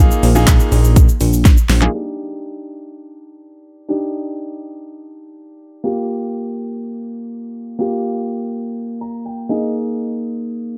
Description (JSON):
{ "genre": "dance-pop", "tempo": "123 BPM", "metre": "4/4", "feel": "straight", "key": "Eb major", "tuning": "A4 = 440 Hz", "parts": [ { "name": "clear concert grand piano", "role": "accompaniment", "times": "0.0-10.8 s", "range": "Bb3 to Bb5", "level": "-24 LUFS", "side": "equal", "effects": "sidechain pumping" }, { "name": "chorused synth bass", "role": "bass", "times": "0.0-1.9 s", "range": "Bb1", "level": "-16 LUFS", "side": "equal", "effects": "sidechain pumping" }, { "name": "pop drum kit", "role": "drums", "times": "0.1-1.9 s", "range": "handclaps, hi-hat, kick drum, shaker, snare drum", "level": "-14 LUFS", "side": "equal", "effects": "none" } ], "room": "digital ambience", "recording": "low-pass filter", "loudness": "-17 LUFS", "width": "mono", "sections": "0.0-1.9 A section; 1.9-10.8 B section", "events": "drop 0.0-1.9; drum fill 1.5-1.9; filter sweep 1.9-10.8; grand piano fill 8.8-9.7", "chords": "0.0 Bb7sus4; 1.9 Ebmaj7; 5.8 Gm7; 9.5 Bb7sus4", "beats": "0.48 0.96 1.45 | 1.94 2.43 2.92 3.40 | 3.89 4.38 4.87 5.35 | 5.84 6.33 6.82 7.30 | 7.79 8.28 8.77 9.26 | 9.74 10.23 10.72" }